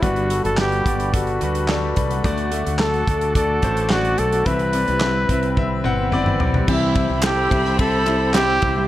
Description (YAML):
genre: piano-driven pop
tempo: 108 BPM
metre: 4/4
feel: straight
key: unclear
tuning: A4 = 440 Hz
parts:
  - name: dark trumpet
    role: melody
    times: 0.0-8.9 s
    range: E4 to B4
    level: -22 LUFS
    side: equal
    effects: none
  - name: warm concert grand piano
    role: accompaniment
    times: 0.0-8.9 s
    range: G2 to F#5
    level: -24 LUFS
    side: left 3 dB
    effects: none
  - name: sweeping resonant pad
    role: sustained chords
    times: 0.0-8.9 s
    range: G3 to E6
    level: -33 LUFS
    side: equal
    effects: none
  - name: fingerpicked steel-string acoustic guitar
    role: riff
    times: 0.0-8.9 s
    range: C3 to C5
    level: -29 LUFS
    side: right 3 dB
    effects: none
  - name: fretless electric bass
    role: bass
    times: 0.0-8.9 s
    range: G1 to D2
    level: -24 LUFS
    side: equal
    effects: lush chorus
  - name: loose indie drum kit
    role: drums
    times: 0.0-8.8 s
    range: crash cymbal, handclaps, hi-hat, kick drum, ride cymbal, snare drum, toms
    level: -23 LUFS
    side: equal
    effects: none
  - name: warm studio violin section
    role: second line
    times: 6.7-8.9 s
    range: C5 to B5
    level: -30 LUFS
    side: left 1 dB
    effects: digital delay
  - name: group handclap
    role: percussion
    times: 7.2-8.5 s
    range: none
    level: -32 LUFS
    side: right 6 dB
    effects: none
room: light reverb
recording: none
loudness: -17 LUFS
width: side -14 dB against mid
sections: 0.0-6.7 A section; 6.7-8.9 B section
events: drum fill 5.6-6.7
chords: 0.0 Gmaj7; 2.2 D; 4.5 Cmaj7; 6.7 C